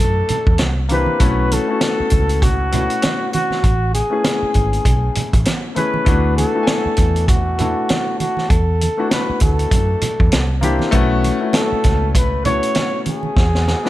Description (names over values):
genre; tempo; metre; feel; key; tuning
lush 1970s-style soul; 99 BPM; 4/4; swing 58% on 16ths; unclear; A4 = 440 Hz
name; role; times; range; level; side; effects
breathy flugelhorn; melody; 0.0-13.9 s; F#4 to C#5; -21 LUFS; equal; none
warm concert grand piano; accompaniment; 0.0-13.9 s; G#3 to G#5; -22 LUFS; left 4 dB; none
vintage muted fingered electric bass; bass; 0.0-13.7 s; G#1 to F#2; -18 LUFS; equal; none
congas; percussion; 0.0-13.8 s; none; -26 LUFS; right 4 dB; none
vintage drum kit; drums; 0.3-13.9 s; hi-hat, kick drum, snare drum; -18 LUFS; equal; none
room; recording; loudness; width
small room ambience; none; -14 LUFS; side -15 dB against mid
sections
0.0-13.9 A section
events
drum fill 13.4-13.9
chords
0.0 D69; 0.6 C9; 1.2 B9sus4; 3.6 Amaj9; 6.1 D69; 8.5 E9sus4; 10.3 C9; 10.9 B9sus4; 13.4 E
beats
0.60 | 1.20 1.81 2.42 3.03 | 3.63 4.24 4.85 5.46 | 6.07 6.67 7.28 7.89 | 8.50 9.11 9.72 10.32 | 10.93 11.54 12.15 12.76 | 13.37